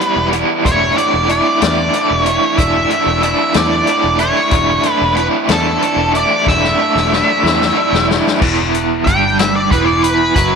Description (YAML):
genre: psychedelic rock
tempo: 62 BPM (dotted quarters)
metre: 6/8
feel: straight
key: unclear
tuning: A4 = 438 Hz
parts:
  - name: octave-fuzz lead guitar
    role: melody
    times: 0.0-10.6 s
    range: A4 to G5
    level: -16 LUFS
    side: equal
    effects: wah, distortion, slapback echo
  - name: raw garage guitar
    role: riff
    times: 0.0-10.6 s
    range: E2 to E4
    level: -15 LUFS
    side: right 2 dB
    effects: overdrive, tremolo
  - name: vintage drum kit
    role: drums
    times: 0.0-10.5 s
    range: crash cymbal, hi-hat, kick drum, snare drum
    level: -19 LUFS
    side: left 4 dB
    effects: none
  - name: overdriven fingered electric bass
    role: bass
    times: 0.2-10.6 s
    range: E1 to E2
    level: -20 LUFS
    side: equal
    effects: none
room: light reverb, small room reverb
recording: 1960s-style stereo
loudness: -11 LUFS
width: side -6 dB against mid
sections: 0.0-8.4 A section; 8.4-10.6 B section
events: drum fill 6.5-8.4; lead electric guitar solo 8.4-10.6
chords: 0.0 Em; 0.6 Asus4/E; 8.4 Emadd9